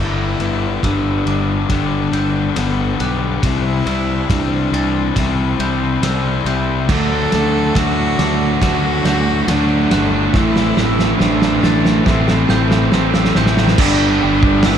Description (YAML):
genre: post-rock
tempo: 70 BPM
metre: 4/4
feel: straight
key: G major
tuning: A4 = 440 Hz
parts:
  - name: warm cello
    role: melody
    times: 0.0-14.8 s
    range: B3 to A4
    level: -21 LUFS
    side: right 1 dB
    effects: tape echo
  - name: electric guitar through a small old amp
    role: arpeggios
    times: 0.0-14.8 s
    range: G2 to G4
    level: -28 LUFS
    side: left 3 dB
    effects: none
  - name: thick fuzz guitar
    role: riff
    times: 0.0-14.8 s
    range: G2 to E4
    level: -20 LUFS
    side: left 10 dB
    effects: distortion
  - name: fuzz picked electric bass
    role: bass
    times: 0.0-14.8 s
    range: G1 to D2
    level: -20 LUFS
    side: right 1 dB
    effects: overdrive
  - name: loose indie drum kit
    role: drums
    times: 0.4-14.8 s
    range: crash cymbal, hi-hat, kick drum, ride cymbal, snare drum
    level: -20 LUFS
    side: right 1 dB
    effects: none
  - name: glockenspiel with hard plastic mallets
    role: arpeggios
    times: 0.8-14.8 s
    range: D6 to A6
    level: -30 LUFS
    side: right 8 dB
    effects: tape echo
  - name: biting overdriven guitar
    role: riff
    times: 6.9-14.8 s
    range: G2 to G4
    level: -20 LUFS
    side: right 15 dB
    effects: none
room: small room ambience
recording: dark, warm production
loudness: -13 LUFS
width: side -8 dB against mid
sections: 0.0-13.8 A section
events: build-up 0.0-13.8; drum fill 0.0-13.8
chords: 0.0 G; 3.4 C; 6.9 D; 10.3 Am; 13.8 G